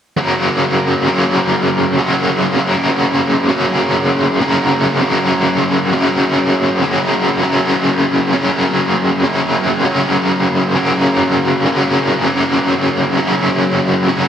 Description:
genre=rock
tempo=99 BPM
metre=4/4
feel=straight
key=F# major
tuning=A4 = 440 Hz
part: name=cranked stack guitar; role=solo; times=0.2-14.3 s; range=F#2 to C#4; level=-12 LUFS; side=equal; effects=overdrive, tremolo, diffuse ambient delay
room=wet church reverb, RT60 4.1 s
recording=dreamy mix soaked in reverb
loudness=-12 LUFS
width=side -9 dB against mid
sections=0.2-14.3 A section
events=none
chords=0.2 F#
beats=| 0.16 0.77 1.37 1.97 | 2.58 3.19 3.79 4.39 | 5.00 5.61 6.21 6.82 | 7.42 8.03 8.63 9.24 | 9.84 10.45 11.05 11.66 | 12.26 12.87 13.47 14.07

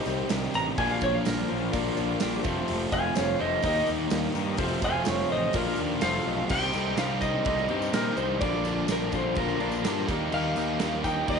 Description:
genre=classic rock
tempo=126 BPM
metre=4/4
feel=straight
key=Bb major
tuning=A4 = 440 Hz
part: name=dark baby grand piano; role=accompaniment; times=0.0-11.4 s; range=D4 to Eb5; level=-36 LUFS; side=left 10 dB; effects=none
part: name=overdriven tonewheel organ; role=sustained chords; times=0.0-11.4 s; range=A3 to F5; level=-43 LUFS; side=left 1 dB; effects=none
part: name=crunchy overdriven guitar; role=riff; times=0.0-11.4 s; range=F2 to F4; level=-32 LUFS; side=right 10 dB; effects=none
part: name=distorted electric guitar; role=riff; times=0.0-11.4 s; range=F2 to G4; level=-32 LUFS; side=left 13 dB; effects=distortion
part: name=fuzz picked electric bass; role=bass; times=0.1-11.4 s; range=F1 to Bb2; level=-33 LUFS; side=equal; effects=overdrive
part: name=tambourine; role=percussion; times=0.1-11.2 s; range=none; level=-47 LUFS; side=left 12 dB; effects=none
part: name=big rock drum kit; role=drums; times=0.3-11.4 s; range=crash cymbal, hi-hat, kick drum, snare drum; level=-32 LUFS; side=right 4 dB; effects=none
part: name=clean lap steel guitar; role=melody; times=0.6-11.4 s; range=Bb4 to Bb5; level=-29 LUFS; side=equal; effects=tape echo
room=light reverb, studio reverb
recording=1960s-style stereo with parts hard left and right, nothing above 10.9 kHz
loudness=-24 LUFS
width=side -6 dB against mid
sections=0.0-6.5 A section; 6.5-11.4 B section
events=electric slide guitar solo 0.0-6.5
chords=0.0 Cm; 0.8 Bb; 2.5 F; 3.6 Eb; 4.6 F; 5.5 Bb; 6.0 F; 6.5 Cm; 8.4 Bb; 10.1 Eb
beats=0.30 | 0.78 1.26 1.74 2.21 | 2.69 3.17 3.64 4.12 | 4.59 5.07 5.55 6.02 | 6.50 6.98 7.46 7.93 | 8.41 8.89 9.37 9.84 | 10.32 10.80 11.28

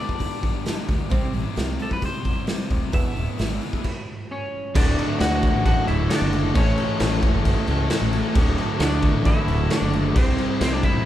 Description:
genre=quiet-loud alternative rock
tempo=133 BPM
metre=4/4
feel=straight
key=D major from 4.8 s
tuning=A4 = 440 Hz
part: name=electric guitar at the edge of break-up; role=melody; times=0.0-11.1 s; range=C4 to F#5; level=-28 LUFS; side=equal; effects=none
part: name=picked steel-string acoustic guitar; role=arpeggios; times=0.0-3.8 s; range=E2 to C4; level=-34 LUFS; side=right 3 dB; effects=none
part: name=tight distorted guitar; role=riff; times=0.0-11.1 s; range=D2 to C5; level=-30 LUFS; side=left 6 dB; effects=distortion
part: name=raw garage drum kit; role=drums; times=0.1-10.9 s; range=crash cymbal, hi-hat, kick drum, snare drum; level=-23 LUFS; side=equal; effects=none
part: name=fuzz fingered electric bass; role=bass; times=0.9-11.1 s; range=D1 to D2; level=-25 LUFS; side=equal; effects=overdrive
part: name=crunchy overdriven guitar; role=riff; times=4.7-11.1 s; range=D2 to C4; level=-27 LUFS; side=equal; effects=none
part: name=thick fuzz guitar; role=riff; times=4.7-11.1 s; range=D2 to C5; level=-30 LUFS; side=right 5 dB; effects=distortion
room=light reverb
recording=band playing live in one room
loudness=-19 LUFS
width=side -12 dB against mid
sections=0.0-4.8 A section; 4.8-11.1 B section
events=stop 3.8-4.8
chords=0.0 G; 1.1 C; 2.9 E; 3.8 N.C.; 4.8 D; 6.6 A; 8.4 D; 10.2 C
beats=0.20 0.66 | 1.11 1.57 2.03 2.48 | 2.94 3.39 3.85 4.30 | 4.75 5.21 5.66 6.11 | 6.56 7.01 7.46 7.91 | 8.36 8.81 9.26 9.71 | 10.16 10.61

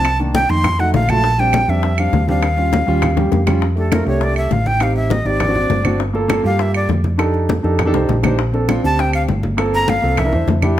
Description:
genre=Afro-Cuban jazz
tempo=201 BPM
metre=4/4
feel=straight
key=F major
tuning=A4 = 439 Hz
part: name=breathy bright jazz flute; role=melody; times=0.0-10.5 s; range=A4 to C6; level=-19 LUFS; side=equal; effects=plate reverb
part: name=dark concert grand piano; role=accompaniment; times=0.0-10.8 s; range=Eb3 to C5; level=-20 LUFS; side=right 1 dB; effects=none
part: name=hollow-body short-scale fingered electric bass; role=bass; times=0.0-10.8 s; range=G1 to G2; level=-18 LUFS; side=equal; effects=none
part: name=claves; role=percussion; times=0.0-10.8 s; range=none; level=-28 LUFS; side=right 5 dB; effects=none
part: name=bongos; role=percussion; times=0.1-10.8 s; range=none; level=-25 LUFS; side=left 8 dB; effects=none
part: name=congas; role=percussion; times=0.1-10.8 s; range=none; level=-23 LUFS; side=left 1 dB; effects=none
room=light reverb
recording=none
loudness=-14 LUFS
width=side -12 dB against mid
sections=0.0-3.6 A section; 3.6-10.8 B section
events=drum fill 3.2-3.6, 7.9-8.4; flute solo 3.6-10.8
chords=0.1 Cm7; 0.6 F7b9; 1.2 Bb69; 2.4 Eb9; 3.6 F69; 4.8 Am7b5; 5.4 Ab7#11; 6.0 Gm7; 7.2 F13; 8.4 Bbadd9; 9.6 Gm11; 10.2 Cadd9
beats=| 0.05 0.35 0.65 0.94 | 1.24 1.54 1.83 2.13 | 2.43 2.73 3.02 3.32 | 3.62 3.92 4.21 4.51 | 4.81 5.11 5.41 5.70 | 6.00 6.30 6.60 6.90 | 7.20 7.49 7.79 8.09 | 8.39 8.69 8.99 9.29 | 9.59 9.88 10.18 10.48 | 10.78

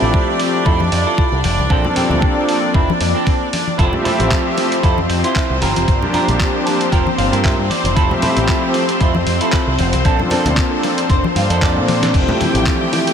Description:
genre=nu-disco, nu disco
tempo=115 BPM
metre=4/4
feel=swing 55% on 16ths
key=F major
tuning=A4 = 440 Hz
part: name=warm analog pad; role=accompaniment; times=0.0-13.0 s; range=F3 to E5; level=-19 LUFS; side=left 1 dB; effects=chorus, ping-pong delay
part: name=clear studio string section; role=sustained chords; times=0.0-13.1 s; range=C4 to G5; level=-21 LUFS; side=left 1 dB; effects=sidechain pumping
part: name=semi-hollow electric guitar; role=riff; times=0.0-12.1 s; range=C4 to A5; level=-22 LUFS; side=right 3 dB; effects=lush chorus, ping-pong delay
part: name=picked electric bass with an envelope filter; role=bass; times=0.0-12.6 s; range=F1 to Bb2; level=-19 LUFS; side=equal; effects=sidechain pumping
part: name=electronic kick drum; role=drums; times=0.1-12.8 s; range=none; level=-17 LUFS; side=equal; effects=none
part: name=dusty soul sampler-style drum kit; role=drums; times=0.4-13.1 s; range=crash cymbal, handclaps, hi-hat, snare drum, toms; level=-23 LUFS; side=equal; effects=none
part: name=congas and bongos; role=percussion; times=0.8-13.0 s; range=none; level=-26 LUFS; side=left 3 dB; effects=none
part: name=wide unison pluck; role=arpeggios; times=12.1-13.1 s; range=E3 to E4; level=-26 LUFS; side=left 3 dB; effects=sidechain pumping, ping-pong delay
room=wet huge ambient reverb, RT60 7.3 s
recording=dreamy mix soaked in reverb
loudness=-13 LUFS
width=side -8 dB against mid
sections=0.0-13.1 A section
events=clean electric guitar fill 6.4-8.0, 11.1-12.1; drum fill 11.9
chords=0.0 Fmaj7; 1.7 Bbmaj9; 3.8 Fmaj7; 5.6 Gm7; 8.0 Fmaj7; 10.1 Bbmaj9; 12.1 Fmaj7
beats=0.14 0.66 1.18 | 1.71 2.23 2.75 3.27 | 3.79 4.32 4.84 5.36 | 5.88 6.40 6.92 7.45 | 7.97 8.49 9.01 9.53 | 10.05 10.57 11.10 11.62 | 12.14 12.66

